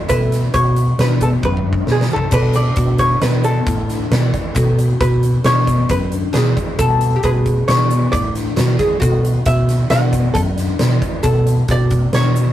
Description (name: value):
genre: progressive instrumental, band music in an uneven meter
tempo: 135 BPM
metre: 5/4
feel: straight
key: B dorian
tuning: A4 = 439 Hz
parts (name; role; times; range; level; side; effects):
- oud; second line; 0.0-12.5 s; D4 to A4; -23 LUFS; equal; none
- archtop guitar, miked and amplified; accompaniment; 0.1-12.5 s; G#4 to F#5; -20 LUFS; equal; none
- vibraphone with soft mallets; arpeggios; 0.1-12.5 s; B3 to A4; -25 LUFS; left 2 dB; none
- sustaining fretless electric bass; bass; 0.1-12.5 s; F#2 to B2; -16 LUFS; equal; none
- huge arena drum kit; drums; 0.1-12.5 s; crash cymbal, hi-hat, kick drum, snare drum, toms; -20 LUFS; equal; none
- egg shaker; percussion; 0.1-12.5 s; none; -37 LUFS; left 4 dB; none
room: moderate booth ambience, RT60 0.2 s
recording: rough rehearsal-room recording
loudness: -13 LUFS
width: side -12 dB against mid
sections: 0.0-12.5 A section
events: hollow-body jazz guitar solo 0.0-12.5; drum fill 1.4-2.3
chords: 0.1 Bm7; 2.3 D5/B; 4.6 Bm; 6.8 D5/B; 9.0 Bm7; 11.2 D6/B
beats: | 0.09 0.54 0.98 1.43 1.88 | 2.33 2.77 3.22 3.66 4.11 | 4.56 5.00 5.45 5.89 6.34 | 6.79 7.23 7.68 8.12 8.57 | 9.01 9.46 9.90 10.35 10.79 | 11.24 11.69 12.13